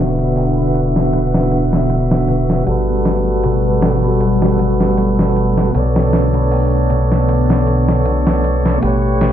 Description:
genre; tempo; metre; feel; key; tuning
trip hop; 78 BPM; 4/4; swing 55% on 16ths; B minor; A4 = 441 Hz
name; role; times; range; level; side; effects
tonewheel organ; accompaniment; 0.0-9.3 s; D3 to E5; -18 LUFS; right 1 dB; stopped rotary speaker, tremolo, tape echo
string machine, cellos; sustained chords; 0.0-9.3 s; G3 to C#6; -20 LUFS; equal; ensemble chorus
concert harp; arpeggios; 0.0-9.3 s; B2 to B3; -19 LUFS; left 2 dB; low-pass filter, digital delay
soft dub sub bass; bass; 0.0-9.3 s; D1 to B1; -19 LUFS; equal; none
dusty soul sampler-style drum kit; drums; 0.2-9.3 s; hi-hat, snare drum; -20 LUFS; equal; low-pass filter on hats, low-pass filter on snare, low-pass filter on room
room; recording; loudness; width
light reverb; low-pass filter; -12 LUFS; side -10 dB against mid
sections
0.0-9.3 A section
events
filter sweep on string machine 0.0-9.3; filter sweep on harp 0.0-9.3; filter sweep 0.0-9.3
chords
0.0 D69; 2.7 Gmaj9; 5.7 Bm9; 8.8 A9

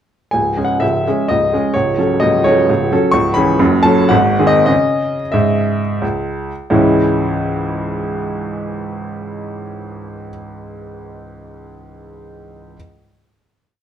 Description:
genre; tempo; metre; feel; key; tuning
classical, romantic triple-time dance for piano with dotted rhythms; 84-139 BPM; 3/4; rubato; C# minor; A4 = 436 Hz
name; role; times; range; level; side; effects
clear baby grand piano; solo; 0.3-12.8 s; C#1 to C#6; -14 LUFS; equal; none
room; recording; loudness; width
light reverb; dark, warm production; -13 LUFS; side -9 dB against mid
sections
0.3-6.7 A section; 6.7-10.6 final chord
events
slowing down 2.5-6.7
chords
0.3 C#m; 1.8 F#m/C#; 3.1 C#m; 3.6 F#m; 4.1 G#7; 4.7 C#m

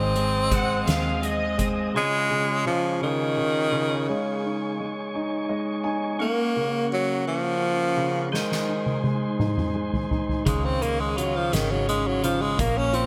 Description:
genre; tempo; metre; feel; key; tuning
six-eight pop ballad; 56 BPM (dotted quarters); 6/8; straight; Db major; A4 = 440 Hz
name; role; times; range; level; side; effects
clear tenor saxophone; melody; 0.0-13.1 s; Db3 to Db4; -28 LUFS; equal; delay
warm concert grand piano; accompaniment; 0.0-13.1 s; Db3 to Ab5; -31 LUFS; equal; none
percussive tonewheel organ; sustained chords; 0.0-13.1 s; Db4 to Eb6; -35 LUFS; equal; fast rotary speaker
twelve-string electric guitar; arpeggios; 0.0-2.5, 10.5-13.1 s; Eb3 to F4; -36 LUFS; equal; subtle chorus
vintage muted fingered electric bass; bass; 0.0-1.9, 10.5-13.1 s; Ab1 to Eb2; -32 LUFS; equal; none
soft-mallet drum kit; drums; 0.2-1.8, 8.3-13.1 s; hi-hat, kick drum, snare drum, toms; -30 LUFS; equal; gated reverb
warm studio violin section; second line; 0.5-1.9 s; Eb5 to Gb5; -33 LUFS; equal; none
room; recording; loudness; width
moderate plate reverb, RT60 3.1 s; bright 1980s-style digital production; -25 LUFS; mono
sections
0.0-1.9 A section; 1.9-13.1 A section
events
grand piano fill 5.1-6.2; drum fill 8.3-10.5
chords
0.0 Ab; 1.9 Db; 4.1 Absus4; 6.2 Gb; 8.3 Ab; 10.5 Dbadd9

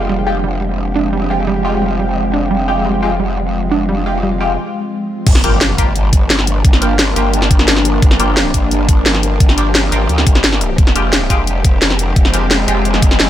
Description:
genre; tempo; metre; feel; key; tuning
dark technical drum and bass; 174 BPM; 4/4; straight; G phrygian; A4 = 440 Hz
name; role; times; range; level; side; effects
swarming drone; sustained chords; 0.0-13.3 s; F3 to G4; -22 LUFS; equal; built-in reverb, sidechain pumping
band-passed chord stab; stabs; 0.0-13.3 s; Ab3 to G4; -21 LUFS; left 1 dB; phaser, lush chorus, digital delay
growl bass; bass; 0.0-13.3 s; F1 to D2; -17 LUFS; equal; chorus, tube saturation, sidechain pumping
deep dark ambient pad; texture; 0.0-13.3 s; Ab3 to G5; -23 LUFS; equal; chorus, built-in reverb, sidechain pumping
warbly dusty pluck; arpeggios; 0.1-4.4 s; G3 to D4; -20 LUFS; right 5 dB; chorus, sidechain pumping, digital delay
drum and bass drum kit; drums; 0.1-13.3 s; crash cymbal, hi-hat, snare drum; -15 LUFS; equal; low-pass filter on hats, low-pass filter on cymbals, low-pass filter on snare, low-pass filter on room
electronic kick drum; drums; 5.3-13.1 s; none; -11 LUFS; equal; overdrive
impact; sound effects; 5.3-6.6 s; none; -21 LUFS; equal; none
room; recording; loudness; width
light reverb; none; -11 LUFS; side -12 dB against mid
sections
0.0-5.3 A section; 5.3-13.3 B section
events
break 4.6-5.3; drop 5.3-13.3; impact 5.3-6.6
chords
0.0 Fmadd9; 5.3 Gm7; 10.8 Fmadd9

